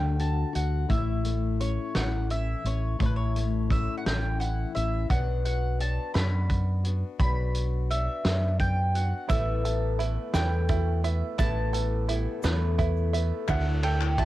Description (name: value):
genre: indie folk with a building arrangement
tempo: 57 BPM (dotted quarters)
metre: 6/8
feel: straight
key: unclear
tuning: A4 = 441 Hz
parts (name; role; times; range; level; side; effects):
- mandolin; melody; 0.0-14.2 s; B4 to B5; -34 LUFS; right 1 dB; cassette tape
- fingerpicked steel-string acoustic guitar; accompaniment; 0.0-5.1 s; D2 to F#4; -32 LUFS; left 9 dB; cassette tape
- deep dub fingered electric bass; bass; 0.0-14.2 s; A1 to F#2; -26 LUFS; equal; none
- loose indie drum kit; drums; 0.2-14.2 s; hi-hat, kick drum, ride cymbal, snare drum; -30 LUFS; equal; cassette tape
- picked old ladder-braced acoustic guitar; accompaniment; 5.1-14.2 s; A2 to A4; -35 LUFS; left 9 dB; cassette tape
- bright upright piano; accompaniment; 9.3-14.2 s; A1 to E5; -38 LUFS; right 8 dB; cassette tape
- bluegrass banjo; arpeggios; 9.3-14.2 s; E4 to E5; -35 LUFS; right 10 dB; cassette tape
- egg shaker; percussion; 9.3-13.6 s; none; -49 LUFS; left 11 dB; none
- group handclap; percussion; 13.5-14.2 s; none; -38 LUFS; left 13 dB; none
room: little or no reverb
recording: home recording on cassette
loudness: -24 LUFS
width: side -15 dB against mid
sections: 0.0-5.1 A section; 5.1-13.5 B section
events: none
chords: 0.0 D; 0.9 A; 5.1 Bm; 9.3 Asus2; 13.5 Dadd9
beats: | 0.90 1.95 | 3.00 4.05 | 5.10 6.15 | 7.20 8.25 | 9.30 10.34 | 11.39 12.44 | 13.48